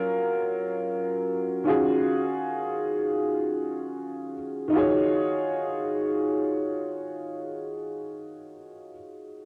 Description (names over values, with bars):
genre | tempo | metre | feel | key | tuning
hip hop | free time | none | none | Eb minor | A4 = 441 Hz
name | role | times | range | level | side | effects
clear upright piano | accompaniment | 0.0-9.5 s | Eb3 to Db5 | -28 LUFS | equal | cassette tape, low-pass filter
room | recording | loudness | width
light reverb, small room ambience | home recording on cassette | -27 LUFS | mono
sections
0.0-4.7 A section; 4.7-7.4 B section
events
none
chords
0.0 Gbmaj7; 1.6 Ebm11